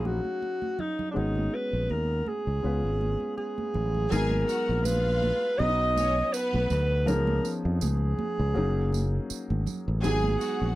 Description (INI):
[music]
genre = lush 1970s-style soul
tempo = 81 BPM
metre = 4/4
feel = swing 54% on 16ths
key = G# dorian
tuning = A4 = 440 Hz
[part]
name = breathy alto saxophone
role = melody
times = 0.0-10.7 s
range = D4 to D#5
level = -29 LUFS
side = right 1 dB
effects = none
[part]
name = warm concert grand piano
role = accompaniment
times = 0.0-10.8 s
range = E#3 to E#5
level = -34 LUFS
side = left 2 dB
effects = none
[part]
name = fingered electric bass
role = bass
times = 0.0-10.8 s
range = F#1 to E#2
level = -27 LUFS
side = equal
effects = none
[part]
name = congas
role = percussion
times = 0.1-10.6 s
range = none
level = -36 LUFS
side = right 4 dB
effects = none
[part]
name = rich studio string section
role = second line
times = 4.1-10.7 s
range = B3 to G#5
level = -35 LUFS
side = left 2 dB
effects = none
[part]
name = tambourine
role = percussion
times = 4.1-10.6 s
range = none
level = -41 LUFS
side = right 13 dB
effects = none
[sound]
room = light reverb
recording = dry, close 1970s-style studio recording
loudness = -25 LUFS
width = side -16 dB against mid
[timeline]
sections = 0.0-4.1 A section; 4.1-10.8 B section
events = none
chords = 0.0 D#m11; 1.2 G#m11; 2.6 C#7; 4.1 G#m9; 5.6 B; 7.1 C#9; 8.6 F#69; 10.0 G#m9